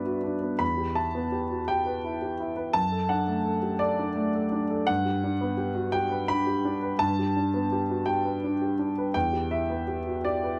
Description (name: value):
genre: neoclassical minimalist piano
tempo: 56 BPM (dotted quarters)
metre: 6/8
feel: rubato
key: G major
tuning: A4 = 440 Hz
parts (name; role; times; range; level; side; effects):
- dark grand piano; solo; 0.0-10.6 s; E2 to B5; -27 LUFS; equal; none
room: light reverb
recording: none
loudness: -27 LUFS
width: mono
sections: 0.0-10.6 A section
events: none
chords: 0.0 Gmaj7; 0.6 Em; 2.7 D/F#; 4.9 Gmaj7; 9.1 Em